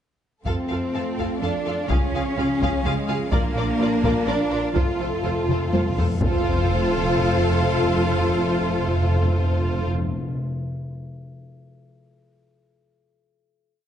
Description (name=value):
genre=cinematic, epic orchestral film score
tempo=125 BPM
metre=3/4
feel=straight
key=F major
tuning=A4 = 438 Hz
part: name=clear trombone section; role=sustained chords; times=0.4-9.9 s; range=F3 to D4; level=-33 LUFS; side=right 4 dB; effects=none
part: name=warm symphonic string section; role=sustained chords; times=0.4-9.9 s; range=A3 to F5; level=-30 LUFS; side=left 1 dB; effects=none
part: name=dark symphonic double bass section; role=bass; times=0.4-9.9 s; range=F1 to F2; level=-28 LUFS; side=right 3 dB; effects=none
part: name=warm symphonic violin section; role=melody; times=0.5-9.9 s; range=C5 to F5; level=-32 LUFS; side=left 5 dB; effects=none
part: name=clear symphonic violin section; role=second line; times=0.5-9.9 s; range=Ab4 to Bb4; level=-32 LUFS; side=equal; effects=none
part: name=warm symphonic viola section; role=accompaniment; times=0.5-9.9 s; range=F4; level=-34 LUFS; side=equal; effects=none
part: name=mellow French horn section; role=sustained chords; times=0.5-9.9 s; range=Ab3 to F4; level=-29 LUFS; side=left 6 dB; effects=none
part: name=rich symphonic cello section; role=bass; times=0.5-9.9 s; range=Ab3 to F4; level=-27 LUFS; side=right 3 dB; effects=none
part: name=taiko ensemble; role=drums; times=0.5-7.1 s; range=none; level=-25 LUFS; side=equal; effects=none
part: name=timpani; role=percussion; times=4.8-10.4 s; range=F2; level=-25 LUFS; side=left 1 dB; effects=none
part: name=reverse cymbal and sub drop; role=sound effects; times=6.1-7.7 s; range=none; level=-33 LUFS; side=equal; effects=none
room=moderate scoring stage reverb, RT60 1.9 s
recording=dark, warm production, nothing above 10.9 kHz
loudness=-20 LUFS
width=side -9 dB against mid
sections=0.5-6.2 theme; 6.2-9.1 final chord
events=timpani fill 4.8-6.2; drum fill 5.5-6.2; reverse cymbal 6.1; impact 6.2-7.7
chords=0.5 F; 1.9 Db; 3.3 Bb; 4.8 F